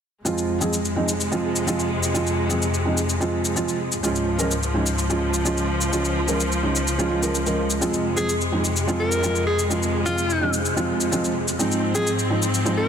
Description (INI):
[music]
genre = EDM, festival progressive house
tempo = 127 BPM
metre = 4/4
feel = straight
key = F minor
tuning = A4 = 440 Hz
[part]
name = felt-muted upright piano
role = accompaniment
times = 0.2-12.9 s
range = F3 to Bb4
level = -24 LUFS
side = right 2 dB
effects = tape echo
[part]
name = rich studio string section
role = sustained chords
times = 0.3-12.9 s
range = Db2 to C4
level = -25 LUFS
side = left 1 dB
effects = none
[part]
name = shaker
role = drums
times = 0.3-12.8 s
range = none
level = -28 LUFS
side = left 2 dB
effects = studio reverb
[part]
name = bright alto saxophone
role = melody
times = 8.2-12.9 s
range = F4 to Bb4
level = -25 LUFS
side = left 1 dB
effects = tape echo
[sound]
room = moderate lush hall reverb, RT60 2.0 s, small room ambience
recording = dense, heavily limited modern master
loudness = -20 LUFS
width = side -8 dB against mid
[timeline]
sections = 0.3-12.9 A section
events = none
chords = 0.3 Fm; 4.0 Db; 7.8 Fm; 11.6 Ab6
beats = | 0.25 0.73 1.20 1.67 | 2.14 2.62 3.09 3.56 | 4.03 4.50 4.98 5.45 | 5.92 6.39 6.87 7.34 | 7.81 8.29 8.76 9.23 | 9.70 10.18 10.65 11.12 | 11.59 12.06 12.54